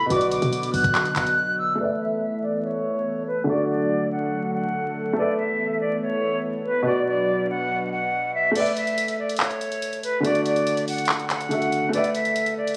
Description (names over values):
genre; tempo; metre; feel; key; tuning
hip hop, trap; 142 BPM; 4/4; half-time; unclear; A4 = 440 Hz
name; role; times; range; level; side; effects
silver concert flute; melody; 0.0-12.7 s; B4 to F#6; -27 LUFS; equal; low-pass filter, tape echo
felt-muted upright piano; accompaniment; 0.0-12.8 s; B2 to E5; -28 LUFS; equal; low-pass filter
warm analog pad; sustained chords; 0.0-8.5 s; D3 to B4; -33 LUFS; equal; chorus, low-pass filter
short 808-style bass; bass; 0.0-1.4 s; B1 to B2; -32 LUFS; equal; none
trap drum kit; drums; 0.1-1.4, 8.6-12.8 s; crash cymbal, handclaps, hi-hat, kick drum; -30 LUFS; equal; none
room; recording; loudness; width
light reverb, digital ambience; recorded on a phone in the room, studio ambience, vinyl crackle; -24 LUFS; mono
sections
0.0-1.8 A section; 1.8-8.6 B section; 8.6-12.8 C section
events
silent gap 1.4-1.8; filter sweep 1.8-8.6; kick muted 8.6-12.8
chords
0.1 Bm; 1.8 Asus2; 3.5 D; 5.2 Asus2; 6.9 Bm; 8.6 Asus2; 10.2 D; 11.9 Asus2